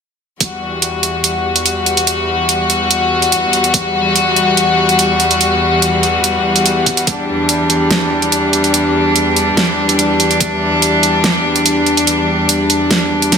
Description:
heavy wobble dubstep; 144 BPM; 4/4; half-time; E minor; A4 = 440 Hz
rich chamber string section; sustained chords; 0.4-13.4 s; E2 to F#4; -13 LUFS; left 1 dB; sidechain pumping
dubstep drum kit; drums; 0.4-13.4 s; hi-hat, snare drum; -14 LUFS; right 2 dB; studio reverb
electronic kick drum; drums; 0.4-0.5, 3.7-3.8, 6.9-7.2, 10.4-10.5 s; -19 LUFS; right 1 dB; high-pass filter on kick, studio reverb
moderate digital room reverb, RT60 1.2 s; -11 LUFS; side -6 dB against mid
0.4-13.4 A section
0.4 Emadd9

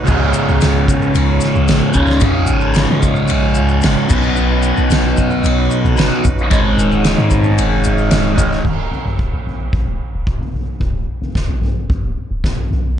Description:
psychedelic rock; 112 BPM; 4/4; straight; A4 = 440 Hz
bright tonewheel organ; sustained chords; 0.0-8.6 s; Db4 to Db5; -24 LUFS; right 5 dB; slow rotary speaker, overdrive
fuzz guitar; riff; 0.0-8.6 s; Db2 to Cb4; -15 LUFS; equal; distortion, phaser
punchy sub bass; bass; 0.1-13.0 s; Db1 to Db3; -18 LUFS; equal
soft-mallet drum kit; drums; 0.1-12.8 s; crash cymbal, kick drum, ride cymbal, snare drum, toms; -18 LUFS; equal
maracas; percussion; 0.1-8.6 s; -30 LUFS; left 8 dB
light reverb, small room ambience; nothing above 10.7 kHz; -13 LUFS; side -9 dB against mid
0.0-8.7 A section; 8.7-13.0 B section
0.1 Db; 4.1 Cbadd9; 6.5 Absus4; 8.7 Bbm/Db

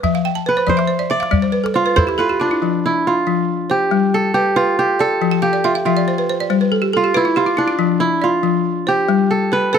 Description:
west african traditional, West African string and xylophone music; 93 BPM (dotted quarters); 12/8; straight; F lydian; A4 = 439 Hz
kora; melody; 0.0-9.8 s; D4 to D5; -17 LUFS; right 2 dB
balafon; arpeggios; 0.0-9.8 s; F3 to A5; -18 LUFS; left 3 dB
calabash; percussion; 0.0-2.2 s; -20 LUFS; equal
light reverb; close, detailed microphones; -14 LUFS; side -7 dB against mid
0.0-2.6 A section; 2.6-9.8 B section
kora solo 0.0-2.6; balafon fill 0.0-2.6, 5.3-7.8
0.0 F5; 1.3 G; 2.6 F5; 3.9 G; 5.2 Fmaj13; 6.5 G; 7.8 F5; 9.1 G

